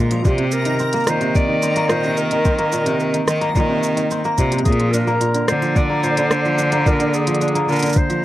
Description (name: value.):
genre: folktronica.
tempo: 109 BPM.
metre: 4/4.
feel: straight.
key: C minor.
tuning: A4 = 440 Hz.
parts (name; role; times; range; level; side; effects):
kora; arpeggios; 0.0-8.2 s; Bb2 to D4; -21 LUFS; right 1 dB; none.
bright cello; bass; 0.0-7.9 s; Bb2 to Eb3; -20 LUFS; equal; none.
backwards swelling texture; texture; 0.0-8.2 s; Bb5 to Bb6; -35 LUFS; equal; built-in reverb.
organic electronic drum kit; drums; 0.1-8.2 s; hi-hat, rim click, shaker; -25 LUFS; right 1 dB; none.
clear clarinet; melody; 0.3-8.2 s; G4 to D5; -23 LUFS; equal; tape echo.
electronic kick drum; drums; 0.3-8.1 s; none; -18 LUFS; equal; none.
room: little or no reverb.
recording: dry, close 1970s-style studio recording.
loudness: -15 LUFS.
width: side -14 dB against mid.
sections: 0.0-8.2 A section.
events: none.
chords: 0.3 Cm7; 4.7 Bb7.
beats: | 0.25 0.80 1.35 1.90 | 2.45 3.00 3.55 4.11 | 4.66 5.21 5.76 6.31 | 6.86 7.41 7.96.